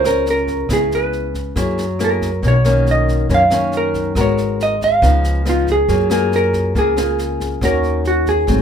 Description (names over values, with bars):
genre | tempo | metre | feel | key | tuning
bossa nova | 139 BPM | 4/4 | straight | unclear | A4 = 440 Hz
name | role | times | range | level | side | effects
vintage hollow-body jazz guitar | melody | 0.0-8.6 s | F4 to F5 | -18 LUFS | right 2 dB | none
nylon-string guitar | accompaniment | 0.0-8.6 s | F#2 to Bb4 | -20 LUFS | left 4 dB | none
upright bass | bass | 0.0-8.6 s | Ab1 to Gb2 | -20 LUFS | equal | none
jazz brush drum kit | drums | 0.0-8.6 s | kick drum, rim click, snare drum | -26 LUFS | right 1 dB | none
room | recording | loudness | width
light reverb | minimal, uncompressed stereo recording | -14 LUFS | side -8 dB against mid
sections
0.0-8.6 A section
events
none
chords
0.0 Gbmaj7 (rootless); 0.7 Dbm7; 1.6 Gb9; 2.4 Bmaj9; 4.2 Abm9; 5.0 Db9; 5.9 Gbmaj9; 7.6 Ebm7